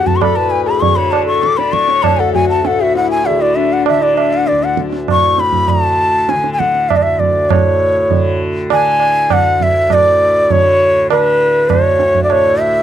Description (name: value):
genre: indian classical, Hindustani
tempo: 99 BPM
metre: 4/4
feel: straight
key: D raga yaman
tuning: A4 = 441 Hz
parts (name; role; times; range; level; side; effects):
- breathy bright bansuri; melody; 0.0-12.8 s; B4-30c to D6; -12 LUFS; left 1 dB; none
- warm sarangi; second line; 0.0-4.9 s; D4 to D5; -18 LUFS; left 16 dB; none
- tanpura; drone; 0.0-12.8 s; D2 to D3; -20 LUFS; equal; none
- tabla; percussion; 0.1-12.5 s; none; -17 LUFS; right 6 dB; none
room: little or no reverb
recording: dry, close 1970s-style studio recording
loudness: -10 LUFS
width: side -10 dB against mid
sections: 0.0-7.5 A section; 7.5-12.8 B section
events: none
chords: none